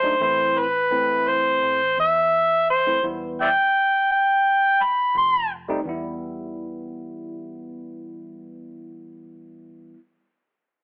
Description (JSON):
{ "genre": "straight-eighth soul blues", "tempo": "85 BPM", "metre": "4/4", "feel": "straight", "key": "E minor", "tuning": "A4 = 440 Hz", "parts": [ { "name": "overdriven harmonica", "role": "melody", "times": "0.0-5.5 s", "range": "B4 to C6", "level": "-20 LUFS", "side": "equal", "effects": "none" }, { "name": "bright tine electric piano", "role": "accompaniment", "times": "0.0-10.0 s", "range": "E3 to E4", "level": "-33 LUFS", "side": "equal", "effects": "phaser" }, { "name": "vintage muted fingered electric bass", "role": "bass", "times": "0.0-10.0 s", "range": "E1 to F#2", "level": "-46 LUFS", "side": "equal", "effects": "none" } ], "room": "moderate stone room reverb, RT60 1.0 s", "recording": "band playing live in one room, telephone sound", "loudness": "-21 LUFS", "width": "mono", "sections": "0.0-5.9 A section; 5.9-8.7 B section", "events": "none", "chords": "0.2 Am; 3.0 Em; 5.2 F7; 5.9 Em" }